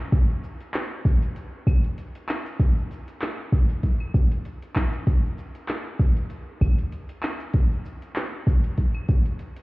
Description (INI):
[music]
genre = downtempo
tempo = 97 BPM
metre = 4/4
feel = swing 56% on 16ths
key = none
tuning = none
[part]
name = afro-pop drum kit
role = drums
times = 0.1-9.6 s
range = cabasa, claves, handclaps, hi-hat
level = -33 LUFS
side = equal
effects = none
[part]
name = electronic kick drum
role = drums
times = 0.1-9.2 s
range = none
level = -20 LUFS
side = equal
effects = none
[part]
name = udu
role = percussion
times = 6.6-6.7 s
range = none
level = -27 LUFS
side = right 1 dB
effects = none
[sound]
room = digital ambience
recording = heard muffled through a wall, stone room reverb, EQ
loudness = -22 LUFS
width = side -22 dB against mid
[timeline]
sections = 0.0-9.6 A section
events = none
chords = none